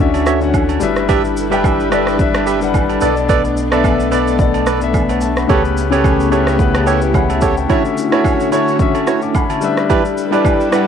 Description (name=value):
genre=amapiano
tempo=109 BPM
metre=4/4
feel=swing 55% on 16ths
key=D major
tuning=A4 = 440 Hz
part: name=clear concert grand piano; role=accompaniment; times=0.0-10.9 s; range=B2 to D6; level=-17 LUFS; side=left 8 dB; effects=none
part: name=soft string machine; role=sustained chords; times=0.0-10.9 s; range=C#3 to B4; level=-21 LUFS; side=equal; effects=ensemble chorus, sidechain pumping
part: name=punchy sub bass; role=bass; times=0.0-7.7 s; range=G1 to D2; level=-22 LUFS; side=right 1 dB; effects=none
part: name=deep house drum kit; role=drums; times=0.1-10.9 s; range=kick drum, rim click, shaker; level=-18 LUFS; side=right 1 dB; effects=cassette tape
part: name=agogo bells and woodblock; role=percussion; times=0.1-10.9 s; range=none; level=-26 LUFS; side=right 10 dB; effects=none
part: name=percussive organ stab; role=stabs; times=0.3-10.9 s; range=E4 to E5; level=-19 LUFS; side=right 9 dB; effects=chorus, tape echo
room=light reverb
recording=home recording on cassette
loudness=-12 LUFS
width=side -8 dB against mid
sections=0.0-10.9 A section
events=grand piano fill 6.0-7.7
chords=0.0 Dmaj9; 0.8 G6; 3.0 Bm7; 5.5 A7/C#; 7.7 Dmaj9; 9.6 G6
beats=0.54 | 1.09 1.64 2.19 2.74 | 3.29 3.84 4.39 4.94 | 5.49 6.04 6.59 7.15 | 7.70 8.25 8.80 9.35 | 9.90 10.45